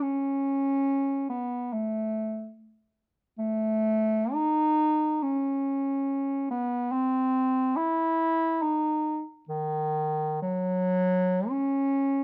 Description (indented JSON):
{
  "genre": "classical, free, expressive piece for unaccompanied bass clarinet",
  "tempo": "69 BPM",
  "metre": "4/4",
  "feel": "uneven beats, rubato",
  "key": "C# minor from 3.4 s",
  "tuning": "A4 = 437 Hz",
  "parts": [
    { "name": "warm bass clarinet", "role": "solo", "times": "0.0-12.2 s", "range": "D#3 to E4", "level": "-27 LUFS", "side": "equal", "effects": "none" }
  ],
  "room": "moderate studio reverb, RT60 0.8 s",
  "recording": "dark, warm production",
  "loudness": "-27 LUFS",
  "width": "mono",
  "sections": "0.0-12.2 A section",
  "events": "none",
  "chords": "none"
}